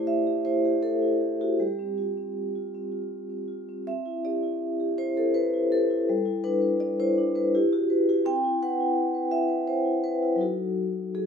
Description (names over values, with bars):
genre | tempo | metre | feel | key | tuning
classical, contemporary piece for solo vibraphone | 82 BPM | 3/4 | uneven beats, rubato | C lydian | A4 = 444 Hz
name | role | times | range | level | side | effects
vibraphone with soft mallets | solo | 0.0-11.3 s | F#3 to G5 | -24 LUFS | equal | none
room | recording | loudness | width
light reverb | minimal, uncompressed stereo recording | -24 LUFS | side -6 dB against mid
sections
0.0-3.9 A section; 3.9-11.3 A section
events
none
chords
0.0 A5; 1.6 G7sus4; 3.9 Cadd9; 6.1 G6; 7.5 E5; 8.2 Cmaj7; 10.4 F#m6